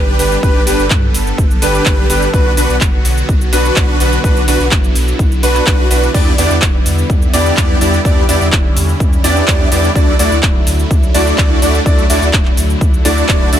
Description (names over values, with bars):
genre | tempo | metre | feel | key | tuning
EDM, festival progressive house | 126 BPM | 4/4 | straight | B minor | A4 = 439 Hz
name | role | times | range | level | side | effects
supersaw pad | sustained chords | 0.0-13.6 s | D3 to A4 | -21 LUFS | equal | phaser, vintage 12-bit sampler grit, sidechain pumping
clear grand piano | arpeggios | 0.0-13.6 s | B4 to D5 | -21 LUFS | right 1 dB | sidechain pumping, dub echo
supersaw chords | riff | 0.0-13.6 s | A3 to D5 | -17 LUFS | equal | wide subtle chorus, sidechain pumping, dub echo
saturated sub bass | bass | 0.0-13.6 s | D1 to G2 | -17 LUFS | equal | sidechain pumping
big-room dance drum kit | drums | 0.2-13.6 s | crash cymbal, handclaps, hi-hat, shaker | -19 LUFS | equal | none
electronic kick drum | drums | 0.4-13.4 s | none | -13 LUFS | equal | none
room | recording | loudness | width
little or no reverb | none | -10 LUFS | side -10 dB against mid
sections
0.0-13.6 A section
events
none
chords
0.0 G; 2.3 Bm; 6.1 Em7; 10.0 Dadd9